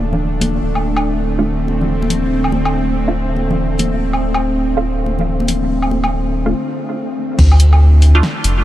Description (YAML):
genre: deep dubstep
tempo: 142 BPM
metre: 4/4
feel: swing 61% on 16ths, half-time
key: unclear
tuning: A4 = 441 Hz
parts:
  - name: bowed-like drone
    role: sustained chords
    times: 0.0-8.6 s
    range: D3 to D4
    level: -20 LUFS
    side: equal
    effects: built-in reverb
  - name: soft dub sub bass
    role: bass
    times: 0.0-8.6 s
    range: D1 to D2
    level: -15 LUFS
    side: equal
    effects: none
  - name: congas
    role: percussion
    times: 0.1-6.0 s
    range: none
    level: -24 LUFS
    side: left 2 dB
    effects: dub echo
  - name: deep house drum kit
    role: drums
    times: 0.4-8.5 s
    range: crash cymbal, hi-hat, snare drum, woodblock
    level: -24 LUFS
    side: equal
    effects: none
  - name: filtered dub chord stab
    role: stabs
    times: 1.4-8.2 s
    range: A3 to F4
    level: -25 LUFS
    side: right 2 dB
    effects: phaser, dub echo
  - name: electronic kick drum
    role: drums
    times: 7.4-7.5 s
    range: none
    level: -15 LUFS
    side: equal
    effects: none
room: light reverb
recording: lossy compression artefacts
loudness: -13 LUFS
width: side -14 dB against mid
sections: 0.0-7.4 A section; 7.4-8.6 B section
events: break 6.5-7.4; drop 7.4-8.6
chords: 0.0 D5; 7.4 Dm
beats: 0.20 | 0.63 1.05 1.47 1.89 | 2.32 2.74 3.16 3.58 | 4.01 4.43 4.85 5.27 | 5.70 6.12 6.54 6.96 | 7.39 7.81 8.23